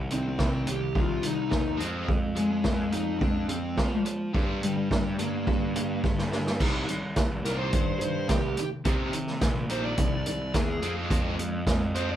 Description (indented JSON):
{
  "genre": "indie rock",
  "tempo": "106 BPM",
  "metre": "4/4",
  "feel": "straight",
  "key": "C minor",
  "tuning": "A4 = 440 Hz",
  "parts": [
    { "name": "biting overdriven guitar", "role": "riff", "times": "0.0-12.2 s", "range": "G2 to C4", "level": "-32 LUFS", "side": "left 1 dB", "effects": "tremolo" },
    { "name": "fuzz picked electric bass", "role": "bass", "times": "0.0-12.2 s", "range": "Bb1 to F3", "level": "-32 LUFS", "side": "equal", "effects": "overdrive" },
    { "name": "dark smooth lead guitar", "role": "melody", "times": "0.1-12.2 s", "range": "G3 to D5", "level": "-30 LUFS", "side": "left 1 dB", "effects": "overdrive" },
    { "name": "vintage drum kit", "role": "drums", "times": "0.1-12.1 s", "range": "crash cymbal, hi-hat, kick drum, snare drum", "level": "-28 LUFS", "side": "right 1 dB", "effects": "none" }
  ],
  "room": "light reverb",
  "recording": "band playing live in one room",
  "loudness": "-25 LUFS",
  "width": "side -11 dB against mid",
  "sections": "0.0-6.6 A section; 6.6-12.2 B section",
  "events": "drum fill 6.0-6.6",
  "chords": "0.0 Cm; 1.8 Fm; 4.3 Gm; 6.6 Cm; 10.8 Fm",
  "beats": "0.40 0.96 1.53 | 2.09 2.65 3.22 3.78 | 4.34 4.91 5.47 6.04 | 6.60 7.16 7.73 8.29 | 8.85 9.41 9.98 10.54 | 11.10 11.66"
}